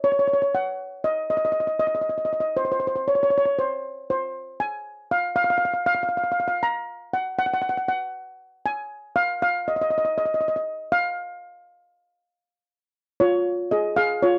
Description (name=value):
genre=calypso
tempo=118 BPM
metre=4/4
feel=straight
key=unclear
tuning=A4 = 444 Hz
part: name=steel pan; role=solo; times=0.0-14.4 s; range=F4 to Bb5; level=-24 LUFS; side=equal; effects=none
room=light reverb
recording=dry, close 1970s-style studio recording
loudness=-24 LUFS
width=mono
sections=0.0-13.2 A section; 13.2-14.4 B section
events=none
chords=0.0 N.C.; 13.2 Fm